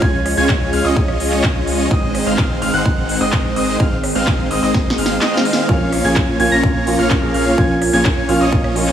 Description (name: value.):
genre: EDM, festival progressive house.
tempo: 127 BPM.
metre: 4/4.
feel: straight.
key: Bb minor.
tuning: A4 = 438 Hz.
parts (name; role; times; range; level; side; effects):
lush unison pad; sustained chords; 0.0-8.9 s; Eb3 to Db4; -22 LUFS; right 1 dB; chorus, phaser, sidechain pumping.
bright concert grand piano; arpeggios; 0.0-8.9 s; Eb6 to Bb6; -23 LUFS; equal; sidechain pumping, tape echo.
supersaw chords; riff; 0.0-8.9 s; Ab3 to Bb5; -19 LUFS; equal; cassette tape, sidechain pumping, tape echo.
saturated sub bass; bass; 0.0-8.9 s; Ab1 to Db2; -24 LUFS; equal; sidechain pumping.
electronic kick drum; drums; 0.0-8.6 s; none; -18 LUFS; equal; none.
big-room dance drum kit; drums; 0.3-8.9 s; handclaps, hi-hat, rim click, snare drum; -23 LUFS; equal; none.
felt-muted upright piano; accompaniment; 5.7-8.9 s; F3 to Ab4; -20 LUFS; right 1 dB; sidechain pumping, tape echo.
room: light reverb, digital ambience.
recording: none.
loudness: -13 LUFS.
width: side -10 dB against mid.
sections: 0.0-8.9 A section.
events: drum fill 4.7-5.7.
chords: 0.0 Db; 1.9 Ab; 5.7 Bbm.